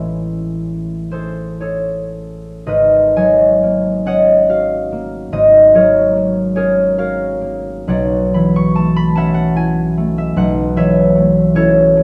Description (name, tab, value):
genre	classical, solo harp piece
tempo	37-52 BPM (dotted quarters)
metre	6/8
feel	rubato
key	unclear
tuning	A4 = 440 Hz
part	concert harp	solo	0.0-12.0 s	G#1 to C#6	-14 LUFS	equal	none
room	wet stone room reverb, RT60 1.3 s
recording	dark, warm production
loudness	-14 LUFS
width	mono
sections	0.0-2.6 A section; 2.6-12.0 B section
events	none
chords	0.0 Amaj7; 2.6 G#m11; 5.3 F#add9/G#; 7.9 Bm11; 10.4 Aadd9/B